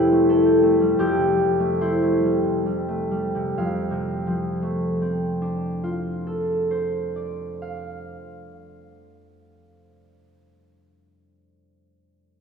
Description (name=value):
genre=classical, solo harp piece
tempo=63-91 BPM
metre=3/4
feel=rubato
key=F major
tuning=A4 = 440 Hz
part: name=concert harp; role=solo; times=0.0-10.3 s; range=F2 to F5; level=-20 LUFS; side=equal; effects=none
room=wet church reverb, RT60 2.8 s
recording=minimal, uncompressed stereo recording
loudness=-20 LUFS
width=side -6 dB against mid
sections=0.0-3.6 A section; 3.6-8.8 B section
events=slowing down 0.0-3.6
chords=0.0 Fmaj9; 3.6 F6